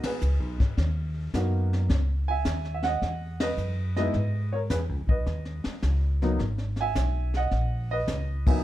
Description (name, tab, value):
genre	jazz piano trio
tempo	107 BPM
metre	4/4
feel	swing 69% on 8ths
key	G# minor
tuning	A4 = 438 Hz
part	warm grand piano	melody	0.0-8.6 s	F#3 to G#5	-30 LUFS	right 2 dB	none
part	upright bass	bass	0.0-8.6 s	G#1 to G#2	-26 LUFS	equal	none
part	jazz brush drum kit	drums	0.0-8.6 s	brushed snare drum, hi-hat, kick drum, ride cymbal, snare drum	-29 LUFS	left 1 dB	none
room	little or no reverb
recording	dark, warm production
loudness	-25 LUFS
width	side -14 dB against mid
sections	0.0-8.6 A section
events	band accent 0.0, 3.3, 8.4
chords	0.0 G#m9; 1.9 C#m9; 6.4 G#m9